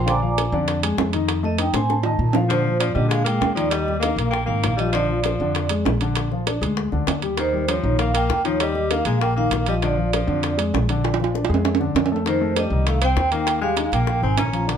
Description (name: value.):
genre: Afro-Cuban jazz.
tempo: 197 BPM.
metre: 4/4.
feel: straight.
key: Bb mixolydian.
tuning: A4 = 440 Hz.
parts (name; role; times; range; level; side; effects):
vibraphone with medium hard mallets; melody; 0.0-14.8 s; C5 to D6; -25 LUFS; right 5 dB; none.
warm grand piano; accompaniment; 0.0-14.8 s; D3 to Eb6; -25 LUFS; left 4 dB; none.
upright bass; bass; 0.0-14.8 s; Ab1 to Bb2; -24 LUFS; equal; none.
bongos; percussion; 0.1-14.8 s; none; -29 LUFS; left 7 dB; none.
timbales; percussion; 0.1-14.8 s; none; -25 LUFS; right 9 dB; none.
clear tenor saxophone; second line; 2.5-14.7 s; Eb3 to Db4; -26 LUFS; left 5 dB; none.
room: light reverb.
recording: dark, warm production.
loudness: -18 LUFS.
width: side -8 dB against mid.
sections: 0.0-2.5 A section; 2.5-14.8 B section.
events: vibraphone solo 0.0-2.5; drum fill 1.7-2.5, 11.0-12.3.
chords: 0.1 Bb7; 1.3 F7; 2.5 Bb13; 3.7 Ebadd9; 4.9 Bb; 7.4 Ebadd9; 9.8 Bb7; 12.3 F9; 13.5 Eb9.